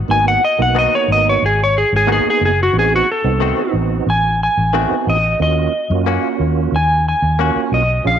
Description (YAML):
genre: blues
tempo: 90 BPM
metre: 4/4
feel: straight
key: Eb minor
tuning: A4 = 440 Hz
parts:
  - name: vintage muted fingered electric bass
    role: bass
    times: 0.0-8.2 s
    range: Gb1 to Gb2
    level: -18 LUFS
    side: left 1 dB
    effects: tube saturation
  - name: clean lap steel guitar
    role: melody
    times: 0.1-8.2 s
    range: Gb4 to Ab5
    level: -16 LUFS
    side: equal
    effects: none
  - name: tonewheel organ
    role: accompaniment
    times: 0.1-8.2 s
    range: Bb3 to Ab4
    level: -22 LUFS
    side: right 14 dB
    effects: slow rotary speaker, overdrive, chorus vibrato
  - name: direct-recorded clean electric guitar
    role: stabs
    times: 0.7-7.6 s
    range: Eb3 to Gb4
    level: -24 LUFS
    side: left 10 dB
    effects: spring reverb, slapback echo
room: light reverb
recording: 1960s-style stereo with parts hard left and right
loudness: -13 LUFS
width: side -9 dB against mid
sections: 0.0-8.2 A section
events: electric slide guitar solo 0.0-8.2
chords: 0.0 Abm7; 2.7 Adim7; 5.4 Ebm7